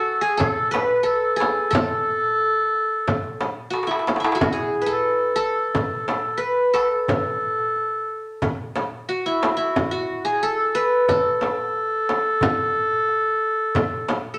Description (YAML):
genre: Arabic maqam ensemble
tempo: 90 BPM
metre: 4/4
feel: straight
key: unclear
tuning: A4 = 440 Hz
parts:
  - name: qanun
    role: melody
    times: 0.0-14.4 s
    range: E4 to B4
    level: -25 LUFS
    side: equal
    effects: none
  - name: warm clarinet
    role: second line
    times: 0.0-14.4 s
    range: E4 to B4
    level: -26 LUFS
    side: equal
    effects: none
  - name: darbuka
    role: percussion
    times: 0.4-14.2 s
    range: none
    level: -30 LUFS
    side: equal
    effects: none
  - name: frame drum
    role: percussion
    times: 0.4-14.2 s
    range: none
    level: -28 LUFS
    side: equal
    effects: none
room: wet studio reverb, RT60 0.9 s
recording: none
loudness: -22 LUFS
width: mono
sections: 0.0-14.4 A section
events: drum fill 3.8-4.4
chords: none